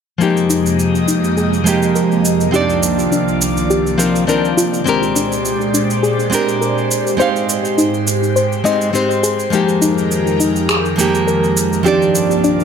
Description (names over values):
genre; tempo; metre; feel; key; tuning
sunset chillout; 103 BPM; 4/4; swing 55% on 16ths; F dorian; A4 = 440 Hz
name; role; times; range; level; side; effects
nylon-string guitar; accompaniment; 0.2-12.6 s; F3 to F5; -16 LUFS; moving between left 5 dB and right 6 dB; auto-pan, low-pass filter, tape echo
airy breathy pad; sustained chords; 0.2-12.6 s; C2 to Eb5; -19 LUFS; equal; chorus, phaser
electronic cabasa and finger snaps; drums; 0.2-12.6 s; none; -22 LUFS; right 2 dB; overdrive
soft round pluck; arpeggios; 0.5-12.6 s; D4 to Eb5; -20 LUFS; left 2 dB; chorus, tape echo
room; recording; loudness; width
moderate digital room reverb, RT60 1.1 s; none; -13 LUFS; side -7 dB against mid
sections
0.2-12.6 A section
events
filter sweep on synth pluck 0.2-12.6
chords
0.2 Fm11; 2.5 Cm11; 4.9 Bb13; 7.2 Abmaj7; 9.5 Fm11; 11.9 Cm11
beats
| 0.21 0.79 1.37 1.95 | 2.54 3.12 3.70 4.28 | 4.87 5.45 6.03 6.61 | 7.20 7.78 8.36 8.94 | 9.53 10.11 10.69 11.27 | 11.86 12.44